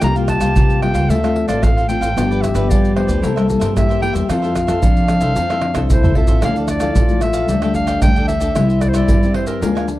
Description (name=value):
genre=samba and choro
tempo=112 BPM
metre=4/4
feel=straight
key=unclear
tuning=A4 = 440 Hz
part: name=warm clarinet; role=melody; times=0.0-9.9 s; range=Bb4 to Bb5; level=-22 LUFS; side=equal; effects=none
part: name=warm trombone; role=second line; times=0.0-10.0 s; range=C4 to A4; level=-24 LUFS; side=left 4 dB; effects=none
part: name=cavaquinho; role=accompaniment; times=0.0-9.9 s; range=D4 to Ab5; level=-28 LUFS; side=right 2 dB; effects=none
part: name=nylon-string guitar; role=accompaniment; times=0.0-10.0 s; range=G2 to A4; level=-22 LUFS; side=left 4 dB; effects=none
part: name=upright bass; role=bass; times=0.0-10.0 s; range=G1 to F3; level=-19 LUFS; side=right 1 dB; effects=none
part: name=maracas, surdo, pandeiro and tamborim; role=percussion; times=0.0-10.0 s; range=none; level=-18 LUFS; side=right 1 dB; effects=none
room=little or no reverb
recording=dry, close 1970s-style studio recording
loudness=-13 LUFS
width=side -16 dB against mid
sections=0.0-6.4 A section; 6.4-10.0 B section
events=drum fill 5.6-6.4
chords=0.0 C7sus4; 1.1 Dm7; 2.2 G7; 3.2 C7; 4.3 Fmaj7; 6.4 Dmadd9; 7.5 Gsus2/D; 8.6 C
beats=| 0.02 0.56 1.09 1.63 | 2.16 2.69 3.23 3.76 | 4.30 4.83 5.36 5.90 | 6.43 6.96 7.50 8.03 | 8.56 9.10 9.63